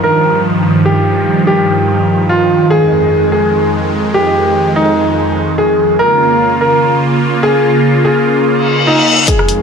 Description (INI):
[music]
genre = heavy wobble dubstep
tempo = 146 BPM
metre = 4/4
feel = swing 55% on 16ths, half-time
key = unclear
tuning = A4 = 444 Hz
[part]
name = clear concert grand piano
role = melody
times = 0.0-9.6 s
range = Eb4 to Bb4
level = -12 LUFS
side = equal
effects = vintage 12-bit sampler grit, low-pass filter, tape echo
[part]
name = supersaw pad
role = sustained chords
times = 0.0-9.6 s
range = F2 to F4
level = -12 LUFS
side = right 1 dB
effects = phaser, sidechain pumping
[part]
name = reverse cymbal and riser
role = sound effects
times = 8.6-9.6 s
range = none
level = -12 LUFS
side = left 4 dB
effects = none
[part]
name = dubstep drum kit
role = drums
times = 9.3-9.6 s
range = hi-hat, rim click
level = -16 LUFS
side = left 2 dB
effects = high-pass filter on toms, low-pass filter on toms, high-pass filter on cymbals, low-pass filter on cymbals, high-pass filter on hats, low-pass filter on hats, high-pass filter on snare, low-pass filter on snare, high-pass filter on room, low-pass filter on room
[part]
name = electronic kick drum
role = drums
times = 9.3-9.4 s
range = none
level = -13 LUFS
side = left 1 dB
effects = none
[sound]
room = light reverb, digital ambience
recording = none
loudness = -9 LUFS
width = side -6 dB against mid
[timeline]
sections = 0.0-9.3 A section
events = reverse cymbal 8.6-9.3; riser 9.3-9.6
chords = 0.0 Ebadd9; 2.7 Fm7; 6.0 Db6